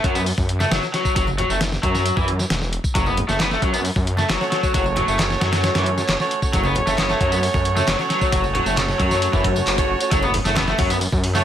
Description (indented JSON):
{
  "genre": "breakbeat, breaks",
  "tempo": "134 BPM",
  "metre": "4/4",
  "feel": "straight",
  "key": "F# minor",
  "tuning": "A4 = 439 Hz",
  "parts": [
    { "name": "raw garage guitar", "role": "riff", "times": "0.0-11.4 s", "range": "E3 to B3", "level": "-23 LUFS", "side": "left 1 dB", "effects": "overdrive, tube saturation, tape echo" },
    { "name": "detuned saw bass", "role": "bass", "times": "0.0-11.4 s", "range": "E1 to F#2", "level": "-23 LUFS", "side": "equal", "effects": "none" },
    { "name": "dusty soul sampler-style drum kit", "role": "drums", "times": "0.0-11.4 s", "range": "hi-hat, kick drum, snare drum", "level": "-23 LUFS", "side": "equal", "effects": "none" },
    { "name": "punchy analog drum machine", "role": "drums", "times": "0.2-11.4 s", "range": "handclaps, hi-hat, tambourine", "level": "-29 LUFS", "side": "right 1 dB", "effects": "none" },
    { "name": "congas and bongos", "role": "percussion", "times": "0.6-11.4 s", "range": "none", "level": "-30 LUFS", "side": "right 1 dB", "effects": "none" },
    { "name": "warm horn section", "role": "stabs", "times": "4.4-11.4 s", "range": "A3 to C#5", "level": "-23 LUFS", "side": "right 3 dB", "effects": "low-pass filter, tape echo" },
    { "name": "swell and impact", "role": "sound effects", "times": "9.4-11.4 s", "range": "none", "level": "-30 LUFS", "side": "left 2 dB", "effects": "none" }
  ],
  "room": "light reverb",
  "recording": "none",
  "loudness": "-17 LUFS",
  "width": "side -10 dB against mid",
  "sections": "0.0-10.1 A section; 10.1-11.4 B section",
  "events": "swell 9.4-10.1; band accent 9.7; drop 10.1-11.4; impact 10.1-11.4",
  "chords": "0.0 F#m"
}